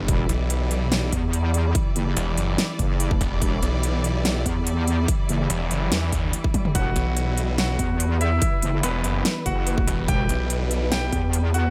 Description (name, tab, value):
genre	heavy wobble dubstep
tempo	144 BPM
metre	4/4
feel	half-time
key	E minor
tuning	A4 = 441 Hz
part	warm studio string section	sustained chords	0.0-11.7 s	E3 to D5	-33 LUFS	equal	sidechain pumping
part	snarling distorted saw bass	bass	0.0-11.1 s	E1 to E2	-26 LUFS	equal	distortion, overdrive
part	wobble bass	bass	0.1-11.7 s	E1 to E2	-25 LUFS	equal	chorus, overdrive
part	big-room dance drum kit	drums	0.1-11.6 s	hi-hat, snare drum, toms	-28 LUFS	equal	small room ambience
part	electronic kick drum	drums	0.1-11.2 s	none	-27 LUFS	equal	small room ambience
part	bright grand piano	melody	6.8-11.7 s	B3 to G5	-31 LUFS	equal	delay
room	little or no reverb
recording	none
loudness	-23 LUFS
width	mono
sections	0.0-11.7 A section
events	drum fill 6.5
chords	0.0 Emadd9